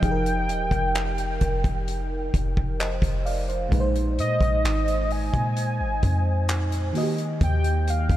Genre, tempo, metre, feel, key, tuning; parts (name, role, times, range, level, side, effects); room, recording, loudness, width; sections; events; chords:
contemporary R&B; 65 BPM; 4/4; straight; A4 = 442 Hz
warm velvety synth lead; melody; 0.0-8.2 s; Eb5 to Ab5; -29 LUFS; equal; chorus, tape echo
FM electric piano with soft pad layer; accompaniment; 0.0-8.2 s; Bb2 to F5; -28 LUFS; equal; chorus
soft 808-style bass; bass; 0.0-8.2 s; Eb1 to Bb2; -25 LUFS; equal
warm soul drum kit; drums; 0.0-8.2 s; handclaps, hi-hat, kick drum; -27 LUFS; equal
moderate huge ambient reverb, RT60 7.2 s; dreamy mix soaked in reverb; -22 LUFS; side -13 dB against mid
0.0-8.2 A section
0.0 F9sus4; 3.7 Bb9sus4; 7.0 Eb